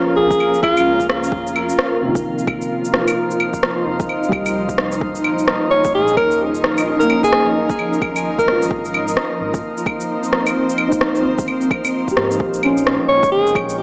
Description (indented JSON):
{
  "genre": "future garage",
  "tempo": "130 BPM",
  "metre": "4/4",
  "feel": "swing 61% on 16ths",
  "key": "Bb dorian",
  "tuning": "A4 = 439 Hz",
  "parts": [
    { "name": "felt-muted upright piano", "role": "accompaniment", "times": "0.0-13.8 s", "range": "C3 to Bb4", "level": "-26 LUFS", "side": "equal", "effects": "sidechain pumping, tape echo" },
    { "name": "granular cloud pad", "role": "sustained chords", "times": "0.0-13.8 s", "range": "F3 to F5", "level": "-24 LUFS", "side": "equal", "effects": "built-in reverb, vintage 12-bit sampler grit, sidechain pumping" },
    { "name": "drifting glass-harmonics texture", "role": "texture", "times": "0.0-13.8 s", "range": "Ab3 to G5", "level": "-30 LUFS", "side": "equal", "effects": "chorus, built-in reverb" },
    { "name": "clear alto saxophone", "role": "melody", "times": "0.2-1.1, 5.7-8.8, 13.1-13.6 s", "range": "F4 to Db5", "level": "-20 LUFS", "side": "equal", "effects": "vintage 12-bit sampler grit, tape echo" },
    { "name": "dark detuned saw bass", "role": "bass", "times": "0.2-13.8 s", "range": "Eb1 to Ab2", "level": "-35 LUFS", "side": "equal", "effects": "none" },
    { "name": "electronic kick drum", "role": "drums", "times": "0.3-13.7 s", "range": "none", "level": "-29 LUFS", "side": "equal", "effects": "overdrive, vintage 12-bit sampler grit" },
    { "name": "electronic shaker, claves and rim click", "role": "drums", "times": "0.3-13.8 s", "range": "none", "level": "-24 LUFS", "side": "equal", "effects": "overdrive, vintage 12-bit sampler grit" }
  ],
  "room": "moderate lush hall reverb, RT60 2.2 s",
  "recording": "cassette tape, small speaker sound",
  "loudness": "-18 LUFS",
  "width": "mono",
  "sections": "0.0-13.8 A section",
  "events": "none",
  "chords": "0.0 Bbm7; 1.3 F5; 5.0 Eb7sus4; 8.7 Ab; 12.4 Bbm7"
}